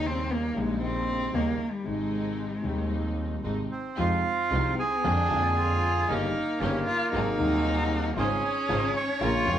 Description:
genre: tango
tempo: 115 BPM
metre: 4/4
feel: rubato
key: Ab major, F minor from 4.0 s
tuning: A4 = 440 Hz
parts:
  - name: warm cello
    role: second line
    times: 0.0-9.6 s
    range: G3 to F4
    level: -30 LUFS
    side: left 1 dB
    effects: none
  - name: dark concert grand piano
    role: accompaniment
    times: 0.0-9.6 s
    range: Eb1 to F4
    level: -32 LUFS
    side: left 2 dB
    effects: none
  - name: dark studio string section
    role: stabs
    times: 0.0-9.6 s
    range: Db3 to C5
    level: -37 LUFS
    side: equal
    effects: none
  - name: bright double bass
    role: bass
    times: 0.0-9.6 s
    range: F1 to F2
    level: -31 LUFS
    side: right 1 dB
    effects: none
  - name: bandoneon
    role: melody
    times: 3.7-9.6 s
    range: Bb3 to Db5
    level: -28 LUFS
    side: right 3 dB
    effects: none
room: moderate large studio reverb, RT60 1.1 s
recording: band playing live in one room, nothing above 10.8 kHz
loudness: -25 LUFS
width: side -10 dB against mid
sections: 0.0-4.0 A section; 4.0-9.6 B section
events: cello solo 0.0-4.0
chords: 0.0 Eb7; 1.9 Ab; 4.0 Fm7; 5.0 Bb7/F; 6.1 Eb7/G; 7.1 Ab7; 8.2 Dbmaj7/Ab

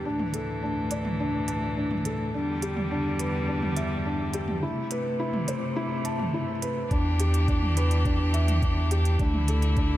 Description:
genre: piano and strings electronica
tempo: 105 BPM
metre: 4/4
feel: straight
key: E minor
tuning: A4 = 439 Hz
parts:
  - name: bright string quartet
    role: sustained chords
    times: 0.0-10.0 s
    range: D2 to G4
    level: -30 LUFS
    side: left 1 dB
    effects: sidechain pumping, shimmer reverb
  - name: felt-muted upright piano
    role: riff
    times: 0.0-10.0 s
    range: D4 to A5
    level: -30 LUFS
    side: equal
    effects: ping-pong delay, shimmer reverb
  - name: organic electronic drum kit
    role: drums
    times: 0.2-9.9 s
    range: hi-hat, toms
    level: -34 LUFS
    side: right 1 dB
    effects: overdrive, studio reverb
  - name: warm sub bass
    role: bass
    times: 6.9-10.0 s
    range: D2 to E2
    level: -23 LUFS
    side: equal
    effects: sidechain pumping
  - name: electronic kick drum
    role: drums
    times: 6.9-9.9 s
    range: none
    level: -27 LUFS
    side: equal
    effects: overdrive, studio reverb
room: light reverb, small room ambience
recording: none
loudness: -24 LUFS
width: side -14 dB against mid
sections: 0.0-6.9 A section; 6.9-10.0 B section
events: build-up 0.0-6.9; drop 6.9-10.0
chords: 0.1 Dsus2; 2.3 Em7; 4.6 Amadd9; 6.9 Em7; 9.2 Dsus2

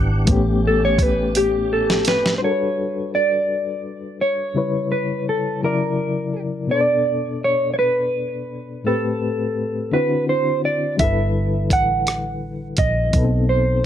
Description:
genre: slow six-eight R&B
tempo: 56 BPM (dotted quarters)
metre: 6/8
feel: straight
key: unclear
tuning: A4 = 440 Hz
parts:
  - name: bright reed electric piano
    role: accompaniment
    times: 0.0-13.9 s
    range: A2 to F#5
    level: -23 LUFS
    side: left 3 dB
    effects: fast tremolo
  - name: tonewheel organ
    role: sustained chords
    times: 0.0-2.4 s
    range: E3 to F#5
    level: -29 LUFS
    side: right 1 dB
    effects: overdrive, chorus vibrato, slow rotary speaker
  - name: vintage muted fingered electric bass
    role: bass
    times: 0.0-2.4, 11.0-13.8 s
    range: F#1 to B1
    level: -22 LUFS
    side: equal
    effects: none
  - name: dusty soul sampler-style drum kit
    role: drums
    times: 0.3-2.4, 11.0-13.3 s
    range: hi-hat, kick drum, rim click, snare drum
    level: -20 LUFS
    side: equal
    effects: none
  - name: mellow electric guitar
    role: melody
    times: 0.7-13.9 s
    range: G4 to F#5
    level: -20 LUFS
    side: right 1 dB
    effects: wide subtle chorus, plate reverb
room: light reverb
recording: none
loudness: -18 LUFS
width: side -10 dB against mid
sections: 0.0-2.4 A section; 2.4-13.9 B section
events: clean electric guitar solo 0.0-2.4; drum fill 1.4-2.4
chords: 0.3 A9; 2.4 Gmaj9#11; 4.6 C#m7b5; 5.6 F#7b13; 6.7 Bm7; 8.9 Am7; 9.9 D7; 11.0 G6; 13.1 B7b9

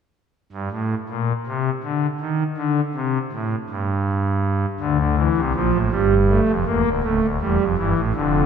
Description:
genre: classical, baroque-style 4-part fugue for pipe organ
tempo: 54 BPM (dotted quarters)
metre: 6/8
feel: straight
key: unclear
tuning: A4 = 441 Hz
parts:
  - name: pipe organ, foundations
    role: solo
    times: 0.5-8.5 s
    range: C#1 to Bb3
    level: -19 LUFS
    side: equal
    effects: none
room: wet scoring stage reverb, RT60 2.1 s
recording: none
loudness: -19 LUFS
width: side -7 dB against mid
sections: 0.3-8.5 A section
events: none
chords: 0.3 N.C.; 4.8 Dm; 5.9 Gm; 7.0 A7/C#

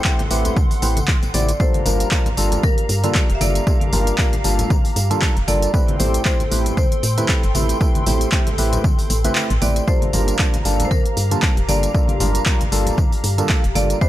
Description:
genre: deep house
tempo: 116 BPM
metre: 4/4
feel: swing 56% on 16ths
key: G dorian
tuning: A4 = 440 Hz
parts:
  - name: hollow soft pad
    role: sustained chords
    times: 0.0-14.1 s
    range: G4 to C6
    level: -28 LUFS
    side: equal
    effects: ensemble chorus, sidechain pumping
  - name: percussive organ stab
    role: stabs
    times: 0.0-14.1 s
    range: G3 to D5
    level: -24 LUFS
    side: equal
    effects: chorus, sidechain pumping, tape echo
  - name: deep house drum kit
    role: drums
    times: 0.0-14.1 s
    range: handclaps, hi-hat, tambourine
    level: -24 LUFS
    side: equal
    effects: none
  - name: electronic kick drum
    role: drums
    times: 0.0-14.1 s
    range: none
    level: -18 LUFS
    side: equal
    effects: none
  - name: congas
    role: percussion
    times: 0.2-13.9 s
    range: none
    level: -28 LUFS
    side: left 2 dB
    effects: sidechain pumping on perc
  - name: woody FM bass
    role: bass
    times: 0.3-13.9 s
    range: F1 to A2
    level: -20 LUFS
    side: equal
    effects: sidechain pumping
  - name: marimba with hard mallets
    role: melody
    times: 1.3-14.1 s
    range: Bb4 to E5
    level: -28 LUFS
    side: left 1 dB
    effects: tape echo
room: little or no reverb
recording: none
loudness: -16 LUFS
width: side -14 dB against mid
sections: 0.0-14.1 A section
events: kick drops out 9.4-9.9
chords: 0.0 Am7; 1.6 Gm7; 5.7 Am7; 9.9 Gm7

